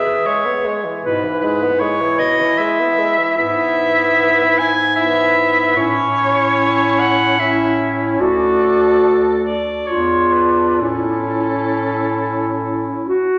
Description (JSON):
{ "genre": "classical, lyrical piece for single-reed quartet", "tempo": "62-79 BPM", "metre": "3/4", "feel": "rubato", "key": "E major, A major from 3.4 s", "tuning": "A4 = 440 Hz", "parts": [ { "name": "warm soprano saxophone", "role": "melody", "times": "0.0-13.1 s", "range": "A4 to G#5", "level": "-20 LUFS", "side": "equal", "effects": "none" }, { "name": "warm clarinet", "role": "second line", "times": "0.0-13.4 s", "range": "E4 to G#4", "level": "-21 LUFS", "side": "equal", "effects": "none" }, { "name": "warm tenor saxophone", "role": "accompaniment", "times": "0.0-13.2 s", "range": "B2 to D4", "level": "-24 LUFS", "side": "equal", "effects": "none" }, { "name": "mellow bass clarinet", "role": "bass", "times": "1.0-13.2 s", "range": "D2 to A2", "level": "-26 LUFS", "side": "equal", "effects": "none" } ], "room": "wet scoring stage reverb, RT60 1.9 s", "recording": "nothing above 10.9 kHz", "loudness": "-16 LUFS", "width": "mono", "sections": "0.0-13.4 A section", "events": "none", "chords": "0.0 E; 1.0 E/G#; 5.8 A; 8.2 D; 9.9 E5; 10.8 A" }